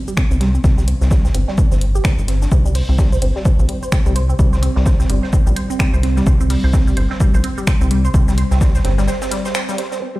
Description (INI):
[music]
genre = minimal techno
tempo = 128 BPM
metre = 4/4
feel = swing 59% on 16ths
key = unclear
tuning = A4 = 440 Hz
[part]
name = resonant blip pluck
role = riff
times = 0.1-10.2 s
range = G3 to C5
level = -22 LUFS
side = right 1 dB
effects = phaser, sidechain pumping, digital delay
[part]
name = punchy analog drum machine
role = drums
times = 0.1-10.0 s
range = cabasa, finger snaps, hi-hat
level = -27 LUFS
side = equal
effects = overdrive, low-pass filter on perc, low-pass filter on hats, low-pass filter on snare
[part]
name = crunchy breakbeat drum kit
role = drums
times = 0.2-10.0 s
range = hi-hat, shaker, snare drum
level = -34 LUFS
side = equal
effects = high-pass filter on hats, high-pass filter on snare, high-pass filter on perc, high-pass filter on room
[part]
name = electronic kick drum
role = drums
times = 0.2-8.7 s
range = none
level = -15 LUFS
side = equal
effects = overdrive
[part]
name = rubbery square bass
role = bass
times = 0.3-9.1 s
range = G1 to C2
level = -16 LUFS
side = equal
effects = sidechain pumping
[sound]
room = little or no reverb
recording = played on a big sound system in a bare room, stone room reverb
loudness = -13 LUFS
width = side -18 dB against mid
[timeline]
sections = 0.0-10.0 A section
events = filter sweep on synth pluck 0.0-10.0; break 9.1-10.0; band accent 9.5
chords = 0.0 C5